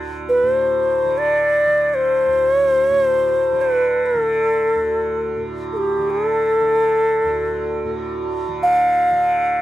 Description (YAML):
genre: indian classical, Hindustani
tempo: free time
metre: none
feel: none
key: unclear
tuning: A4 = 444 Hz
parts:
  - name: tanpura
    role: drone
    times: 0.0-9.6 s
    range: D2 to D3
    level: -26 LUFS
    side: right 2 dB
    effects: none
  - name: bright reedy bansuri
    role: melody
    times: 0.3-9.6 s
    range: G4 to F5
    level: -16 LUFS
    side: equal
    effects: none
room: light reverb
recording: dry, close 1970s-style studio recording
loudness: -16 LUFS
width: side -14 dB against mid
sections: 0.0-9.6 A section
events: none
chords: none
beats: free time